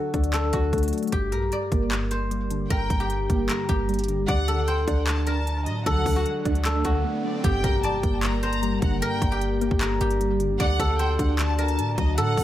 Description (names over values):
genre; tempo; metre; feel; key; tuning
hip hop, trap; 152 BPM; 4/4; half-time; G harmonic minor; A4 = 440 Hz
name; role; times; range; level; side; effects
guzheng; melody; 0.0-12.4 s; F#4 to D5; -28 LUFS; left 1 dB; tape echo
soft electric-piano-like synth keys; accompaniment; 0.0-12.4 s; G2 to D4; -29 LUFS; left 1 dB; chorus, phaser, tape echo
clean 808-style bass; bass; 0.1-12.4 s; G1 to A2; -26 LUFS; equal; none
trap drum kit; drums; 0.1-12.4 s; handclaps, hi-hat, kick drum, rim click; -27 LUFS; equal; none
warm studio violin section; second line; 2.7-12.4 s; D5 to Bb5; -32 LUFS; left 1 dB; tape echo
riser and impact; sound effects; 6.1-9.0 s; none; -36 LUFS; right 1 dB; none
glass harmonica; sustained chords; 7.4-12.4 s; Bb3 to D5; -37 LUFS; left 2 dB; none
room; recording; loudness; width
light reverb, studio ambience; echo-heavy mix; -22 LUFS; side -13 dB against mid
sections
0.0-7.4 A section; 7.4-12.4 B section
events
break 0.0-2.7, 7.0-7.4; riser 6.1-7.4; impact 7.4-9.0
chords
0.0 D; 1.1 Gm; 4.3 D; 7.4 Gm; 10.6 D